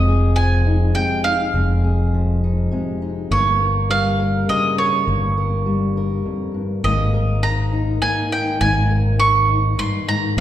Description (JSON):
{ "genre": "acoustic folk duo or small band", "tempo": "102 BPM", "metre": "3/4", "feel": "straight", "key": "unclear", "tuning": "A4 = 441 Hz", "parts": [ { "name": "bowl-back mandolin", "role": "melody", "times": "0.0-10.4 s", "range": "Db5 to Db6", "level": "-20 LUFS", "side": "right 3 dB", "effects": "none" }, { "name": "fingerpicked steel-string acoustic guitar", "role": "accompaniment", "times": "0.0-10.4 s", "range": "F2 to Bb4", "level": "-22 LUFS", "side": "left 2 dB", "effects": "none" }, { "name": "fingered electric bass", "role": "bass", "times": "0.0-10.4 s", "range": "F1 to Bb1", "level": "-20 LUFS", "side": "equal", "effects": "none" } ], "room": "wet recital hall reverb, RT60 1.7 s", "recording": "recorded in a church or concert hall", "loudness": "-16 LUFS", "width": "side -12 dB against mid", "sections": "0.0-10.4 A section", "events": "none", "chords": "0.0 Fm7; 3.3 Gdim; 6.8 Absus2" }